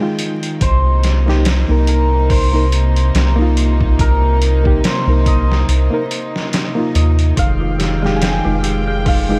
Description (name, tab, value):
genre	trip hop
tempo	71 BPM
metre	4/4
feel	swing 56% on 16ths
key	unclear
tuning	A4 = 440 Hz
part	reed electric piano	accompaniment	0.0-9.4 s	Ab3 to Bb4	-24 LUFS	equal	harmonic tremolo, vintage 12-bit sampler grit, tape echo
part	dark studio string section	sustained chords	0.0-9.4 s	C3 to G5	-26 LUFS	equal	none
part	trip hop sampler-style drum kit	drums	0.2-9.3 s	hi-hat, kick drum, snare drum	-22 LUFS	equal	none
part	cimbalom	melody	0.6-9.4 s	Bb4 to Ab5	-25 LUFS	equal	vintage 12-bit sampler grit, dub echo
part	soft dub sub bass	bass	0.6-9.4 s	F1 to Eb2	-17 LUFS	equal	none
part	dark detuned synth bell	arpeggios	7.4-9.4 s	Eb4 to Ab4	-26 LUFS	equal	chorus, vintage 12-bit sampler grit, tape echo
part	backwards swelling texture	texture	7.9-9.4 s	F5	-36 LUFS	equal	none
room	light reverb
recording	vinyl crackle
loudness	-15 LUFS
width	mono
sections	0.0-9.4 A section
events	none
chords	0.0 Fm9; 0.6 Cm7; 7.4 Fm9